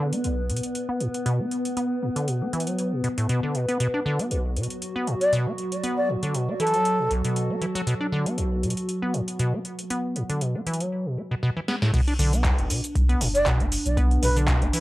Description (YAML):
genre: acid house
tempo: 118 BPM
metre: 4/4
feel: swing 54% on 16ths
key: B minor pentatonic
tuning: A4 = 440 Hz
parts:
  - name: warbly tape-like pad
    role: sustained chords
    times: 0.0-14.8 s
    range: F#3 to B4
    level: -31 LUFS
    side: equal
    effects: chorus, built-in reverb, sidechain pumping, cassette tape
  - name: deep acid bass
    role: riff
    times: 0.0-14.8 s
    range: B1 to D4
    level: -26 LUFS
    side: equal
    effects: cassette tape
  - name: booming analog drum machine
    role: drums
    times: 0.1-14.8 s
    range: crash cymbal, handclaps, hi-hat, shaker, snare drum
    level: -31 LUFS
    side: equal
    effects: overdrive, cassette tape
  - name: breathy mellow concert flute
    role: melody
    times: 5.2-7.1, 13.3-14.4 s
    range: A4 to D5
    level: -25 LUFS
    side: equal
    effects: cassette tape, tape echo
  - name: electronic kick drum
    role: drums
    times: 11.9-14.6 s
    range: none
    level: -24 LUFS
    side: equal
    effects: overdrive, cassette tape
  - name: warm sub bass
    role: bass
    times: 12.2-14.7 s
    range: F#1 to B1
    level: -24 LUFS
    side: equal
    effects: tube saturation, sidechain pumping
room: moderate small room reverb, RT60 0.5 s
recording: home recording on cassette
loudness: -22 LUFS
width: side -17 dB against mid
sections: 0.0-11.9 A section; 11.9-14.8 B section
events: drum fill 11.7; drop 11.9-14.8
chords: 0.0 B5; 11.9 Bm